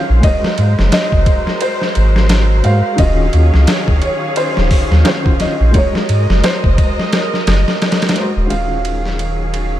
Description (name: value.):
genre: trip hop.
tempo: 87 BPM.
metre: 4/4.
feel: swing 59% on 16ths.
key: Eb dorian.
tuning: A4 = 439 Hz.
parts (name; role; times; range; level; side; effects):
dark upright piano; accompaniment; 0.0-9.8 s; Eb3 to Eb5; -22 LUFS; left 1 dB; tremolo, tape echo.
rich studio string section; sustained chords; 0.0-9.8 s; Eb3 to F5; -22 LUFS; equal; low-pass filter.
soft dub sub bass; bass; 0.1-9.8 s; Eb1 to Ab2; -12 LUFS; equal; none.
felt-muted upright piano; melody; 0.2-9.8 s; Bb4 to F5; -21 LUFS; equal; vintage 12-bit sampler grit, tape echo.
trip hop sampler-style drum kit; drums; 0.2-9.7 s; hi-hat, kick drum, ride cymbal, snare drum; -16 LUFS; equal; high-pass filter on snare, high-pass filter on cymbals, high-pass filter on kick, high-pass filter on hats, high-pass filter on room.
room: light reverb.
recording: none.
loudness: -11 LUFS.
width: side -13 dB against mid.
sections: 0.0-8.5 A section; 8.5-9.8 B section.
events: none.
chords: 0.2 Ab9; 3.0 Ebm11; 5.7 Ab9; 8.5 Ebm11.